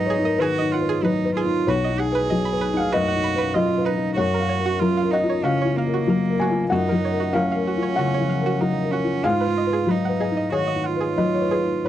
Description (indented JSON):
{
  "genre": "neoclassical piano and strings",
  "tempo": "95 BPM",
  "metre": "4/4",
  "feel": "rubato",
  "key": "unclear",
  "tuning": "A4 = 441 Hz",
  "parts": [
    { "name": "clear cello", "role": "second line", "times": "0.0-11.9 s", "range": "A#3 to G#4", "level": "-25 LUFS", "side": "right 7 dB", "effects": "none" },
    { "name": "felt-muted upright piano", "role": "accompaniment", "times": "0.0-11.9 s", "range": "B1 to G#5", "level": "-21 LUFS", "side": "left 3 dB", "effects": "none" },
    { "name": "string-like resonator pluck", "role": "arpeggios", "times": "0.0-11.9 s", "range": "F#4 to B5", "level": "-30 LUFS", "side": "right 5 dB", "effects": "chorus, slapback echo" }
  ],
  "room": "light reverb",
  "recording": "dry, close 1970s-style studio recording",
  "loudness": "-19 LUFS",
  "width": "side -12 dB against mid",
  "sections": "0.0-11.9 A section",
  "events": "none",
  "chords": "0.0 G#m7; 1.7 Badd9; 4.2 F#maj7; 9.2 G#m7"
}